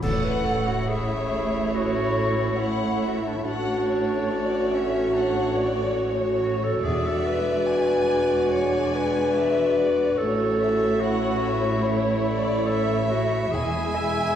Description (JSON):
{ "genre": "classical, slow romantic movement for symphony orchestra", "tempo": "71 BPM", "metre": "4/4", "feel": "rubato", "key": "A major", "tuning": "A4 = 440 Hz", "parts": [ { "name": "rich chamber violin section", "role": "melody", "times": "0.0-14.4 s", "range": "C#5 to E5", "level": "-32 LUFS", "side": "left 2 dB", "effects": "none" }, { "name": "clear clarinet", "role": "second line", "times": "0.0-14.4 s", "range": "C#4 to E5", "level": "-26 LUFS", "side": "left 2 dB", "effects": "none" }, { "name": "rich chamber violin section", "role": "second line", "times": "0.0-14.4 s", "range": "C#5 to G#5", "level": "-30 LUFS", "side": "left 1 dB", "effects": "none" }, { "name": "warm studio viola section", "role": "accompaniment", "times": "0.0-14.4 s", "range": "G#3 to F#4", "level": "-30 LUFS", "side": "right 2 dB", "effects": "none" }, { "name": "mellow French horn section", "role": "sustained chords", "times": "0.0-14.4 s", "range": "G#3 to F#4", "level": "-29 LUFS", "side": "equal", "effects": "none" }, { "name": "rich chamber cello section", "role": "bass", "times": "0.0-14.4 s", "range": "E2 to A2", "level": "-30 LUFS", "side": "right 2 dB", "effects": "none" }, { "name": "rich chamber double bass section", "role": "bass", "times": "0.0-14.4 s", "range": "E1 to A1", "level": "-34 LUFS", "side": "right 2 dB", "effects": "none" }, { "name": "clash cymbals and concert bass drum", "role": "percussion", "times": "0.0-1.7 s", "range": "none", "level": "-33 LUFS", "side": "equal", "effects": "none" }, { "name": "timpani", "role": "percussion", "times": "0.0-1.3, 6.8-8.1, 13.5-14.4 s", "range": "E2 to A2", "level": "-33 LUFS", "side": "equal", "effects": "none" } ], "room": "wet scoring stage reverb, RT60 1.5 s", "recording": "heard from further back in the room, vinyl crackle", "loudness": "-21 LUFS", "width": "side -9 dB against mid", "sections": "0.0-14.4 A section", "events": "band accent 0.0-0.9", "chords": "0.0 A; 3.4 Dmaj7/A; 6.8 E9; 10.2 A; 13.5 E" }